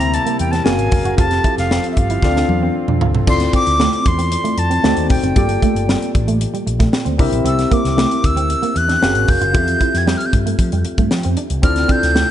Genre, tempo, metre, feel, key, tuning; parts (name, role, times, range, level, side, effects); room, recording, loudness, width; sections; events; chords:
polished 1980s jazz-funk pop; 115 BPM; 4/4; straight; D minor; A4 = 441 Hz
breathy bright jazz flute; melody; 0.0-12.3 s; E5 to G#6; -20 LUFS; equal
barky tine electric piano; accompaniment; 0.0-12.3 s; Bb3 to E#5; -21 LUFS; left 3 dB; overdrive, wide subtle chorus
pipe organ, foundations; sustained chords; 0.0-3.3, 11.6-12.3 s; C3 to E#5; -28 LUFS; equal
clean electric guitar; riff; 0.0-12.2 s; G3 to F#4; -24 LUFS; right 4 dB; lush chorus
mellow fretless electric bass; bass; 0.0-12.2 s; Eb1 to F3; -20 LUFS; equal
crisp fusion drum kit; drums; 0.0-12.3 s; crash cymbal, hi-hat, kick drum, snare drum, toms; -18 LUFS; equal
light reverb; nothing above 10.8 kHz; -14 LUFS; side -11 dB against mid
0.0-3.3 A section; 3.3-12.3 A section
drum fill 2.2-3.3
0.0 C7; 0.7 F#maj9; 1.2 Fmaj9; 2.2 Dm9; 4.8 D7b9; 5.4 Gm9; 7.2 C7; 9.0 F#maj9; 9.5 Fmaj9; 11.6 Dm9